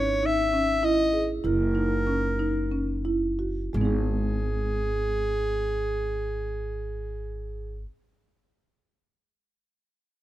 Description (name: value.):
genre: contemporary instrumental, chamber music in an uneven meter.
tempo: 171-203 BPM (eighths).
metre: 7/8.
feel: straight.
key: G# minor.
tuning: A4 = 441 Hz.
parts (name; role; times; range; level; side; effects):
clear clarinet; melody; 0.0-7.8 s; G#4 to E5; -28 LUFS; equal; none.
marimba with medium mallets; arpeggios; 0.0-7.9 s; G#3 to G#4; -27 LUFS; right 1 dB; none.
upright bass; bass; 0.0-7.8 s; F#1 to G#1; -30 LUFS; equal; none.
room: little or no reverb.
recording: close, detailed microphones.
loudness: -24 LUFS.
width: side -14 dB against mid.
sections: 0.0-3.7 A section; 3.7-8.6 B section.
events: slowing down 0.0-3.7.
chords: 0.0 E6/G#; 1.4 F#; 3.7 G#m.